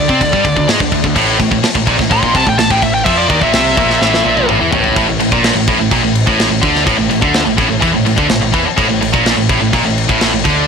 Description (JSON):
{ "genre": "heavy metal", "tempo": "126 BPM", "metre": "4/4", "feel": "straight", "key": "A phrygian", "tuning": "A4 = 440 Hz", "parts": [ { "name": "high-gain lead guitar", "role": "melody", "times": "0.0-4.5 s", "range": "D5 to C6", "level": "-16 LUFS", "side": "left 1 dB", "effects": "distortion, tape echo" }, { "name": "heavy high-gain guitar", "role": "riff", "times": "0.0-10.7 s", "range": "A2 to C4", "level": "-16 LUFS", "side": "left 11 dB", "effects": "distortion" }, { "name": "tight distorted guitar", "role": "riff", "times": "0.0-10.7 s", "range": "A2 to C4", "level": "-16 LUFS", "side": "right 12 dB", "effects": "distortion" }, { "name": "growling picked electric bass", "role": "bass", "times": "0.0-10.7 s", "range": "A1 to C3", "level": "-20 LUFS", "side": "equal", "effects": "overdrive" }, { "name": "tight metal drum kit", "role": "drums", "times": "0.1-10.6 s", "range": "crash cymbal, kick drum, snare drum, toms", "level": "-16 LUFS", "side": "left 1 dB", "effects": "none" } ], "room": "small room ambience", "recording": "blown-out, overdriven recording, overdrive", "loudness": "-10 LUFS", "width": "side -6 dB against mid", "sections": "0.0-5.0 A section; 5.0-10.7 B section", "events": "lead electric guitar solo 0.0-5.0; drum fill 4.0-5.0", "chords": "0.0 D7sus4; 1.2 Am; 5.0 A5" }